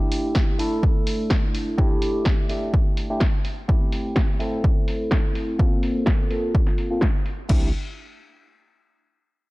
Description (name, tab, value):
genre	filtered disco house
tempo	126 BPM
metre	4/4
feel	swing 53% on 16ths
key	C mixolydian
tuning	A4 = 440 Hz
part	bell-like tine electric piano	accompaniment	0.0-7.7 s	A3 to A4	-26 LUFS	equal	phaser, sidechain pumping, low-pass filter
part	punchy analog drum machine	drums	0.1-7.6 s	crash cymbal, hi-hat, snare drum	-29 LUFS	equal	low-pass filter on hats, low-pass filter on snare, low-pass filter on cymbals, low-pass filter on room
part	electronic kick drum	drums	0.4-7.6 s	none	-21 LUFS	equal	none
part	fat analog bass	bass	7.5-7.7 s	C2	-26 LUFS	equal	sidechain pumping, low-pass filter
room	little or no reverb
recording	dark, warm production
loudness	-19 LUFS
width	side -21 dB against mid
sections	0.0-7.5 A section; 7.5-9.4 B section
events	filter sweep on drum 0.0-7.5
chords	0.0 A7sus4; 3.5 Am7; 5.6 Fadd11/Bb; 7.5 C6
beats	0.35 0.83 1.31 | 1.78 2.26 2.74 3.21 | 3.69 4.17 4.64 5.12 | 5.59 6.07 6.55 7.02 | 7.50